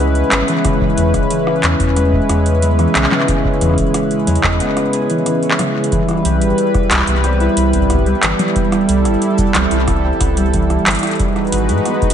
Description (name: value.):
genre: IDM.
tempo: 91 BPM.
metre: 4/4.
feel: straight.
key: unclear.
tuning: A4 = 440 Hz.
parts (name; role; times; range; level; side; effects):
warm analog pad; sustained chords; 0.0-12.1 s; G3 to B4; -18 LUFS; equal; chorus, vintage 12-bit sampler grit.
concert harp; arpeggios; 0.0-12.1 s; C#3 to G#4; -18 LUFS; right 1 dB; vintage 12-bit sampler grit, analog delay.
warm sub bass; bass; 0.0-11.8 s; E1 to G#2; -17 LUFS; equal; tube saturation.
booming analog drum machine; drums; 0.2-12.1 s; cabasa, congas, handclaps, hi-hat, rim click; -19 LUFS; equal; ping-pong delay.
electronic kick drum; drums; 0.6-12.1 s; none; -20 LUFS; equal; none.
room: moderate lush hall reverb, RT60 1.6 s.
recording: dreamy mix soaked in reverb, nothing above 10.4 kHz.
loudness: -12 LUFS.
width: side -9 dB against mid.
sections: 0.0-5.9 A section; 5.9-12.1 B section.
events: none.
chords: 0.0 C#m7; 0.6 E6; 5.9 Cmaj7; 11.2 G#m7.